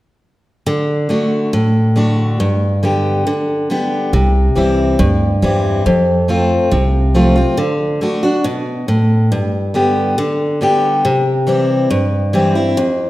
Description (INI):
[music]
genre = country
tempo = 139 BPM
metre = 4/4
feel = straight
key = unclear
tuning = A4 = 443 Hz
[part]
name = picked steel-string acoustic guitar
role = accompaniment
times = 0.7-13.1 s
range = F2 to G4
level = -13 LUFS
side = equal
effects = none
[part]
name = upright bass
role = bass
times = 4.1-7.4 s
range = C2 to F2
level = -16 LUFS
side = equal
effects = none
[sound]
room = wet recital hall reverb, RT60 1.6 s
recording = none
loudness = -13 LUFS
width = side -16 dB against mid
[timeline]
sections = 0.7-7.6 A section; 7.6-13.1 B section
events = none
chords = 0.7 D; 2.4 G; 4.1 C; 5.9 F; 7.6 D; 9.3 G; 11.0 C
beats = | 0.66 1.09 1.53 1.96 | 2.39 2.83 3.26 3.69 | 4.12 4.56 4.99 5.42 | 5.85 6.29 6.72 7.15 | 7.58 8.02 8.45 8.88 | 9.31 9.75 10.18 10.61 | 11.04 11.48 11.91 12.34 | 12.78